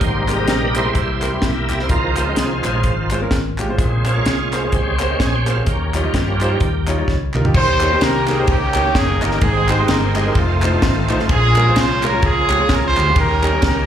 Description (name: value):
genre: uptempo gospel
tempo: 128 BPM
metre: 4/4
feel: swing 57% on 8ths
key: unclear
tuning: A4 = 440 Hz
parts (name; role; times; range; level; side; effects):
- clear concert grand piano; accompaniment; 0.0-13.9 s; Ab2 to Eb5; -23 LUFS; left 1 dB; plate reverb, slapback echo
- bright tonewheel organ; sustained chords; 0.0-13.9 s; C3 to C5; -22 LUFS; right 3 dB; fast rotary speaker, overdrive, chorus vibrato, plate reverb
- fingered electric bass; bass; 0.0-13.9 s; F1 to G2; -20 LUFS; equal; none
- tight funk drum kit; drums; 0.0-13.8 s; crash cymbal, hi-hat, kick drum, ride cymbal, snare drum, toms; -20 LUFS; equal; slapback echo
- group handclap; percussion; 0.3-13.5 s; none; -29 LUFS; left 1 dB; none
- clear horn section; melody; 7.5-13.9 s; A3 to C5; -18 LUFS; right 1 dB; slapback echo, plate reverb
room: light reverb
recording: live gig heard through the venue's PA, club reverb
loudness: -14 LUFS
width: side -9 dB against mid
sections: 0.0-7.6 A section; 7.6-13.9 B section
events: tonewheel organ solo 0.0-7.6; drum fill 7.1-7.6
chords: 0.0 Abmaj9; 1.0 C7; 1.9 Dbmaj7; 3.8 Bbm9; 5.7 Eb9; 7.6 Eb7; 9.4 Abmaj7; 10.4 F7; 11.3 Bbm7; 13.2 Eb7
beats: | 0.02 0.49 0.96 1.43 | 1.90 2.37 2.85 3.32 | 3.79 4.26 4.73 5.20 | 5.67 6.14 6.61 7.08 | 7.55 8.02 8.49 8.96 | 9.43 9.89 10.36 10.83 | 11.29 11.76 12.23 12.69 | 13.16 13.63